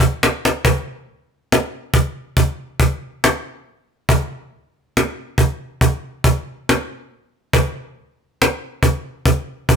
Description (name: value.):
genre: metal.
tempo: 70 BPM.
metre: 4/4.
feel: straight.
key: none.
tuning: none.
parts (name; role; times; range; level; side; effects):
cajon; drums; 0.0-9.8 s; none; -15 LUFS; equal; none.
room: light reverb.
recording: none.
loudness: -17 LUFS.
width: side -7 dB against mid.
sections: 0.7-9.8 A section.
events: drum fill 0.0-0.7.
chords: none.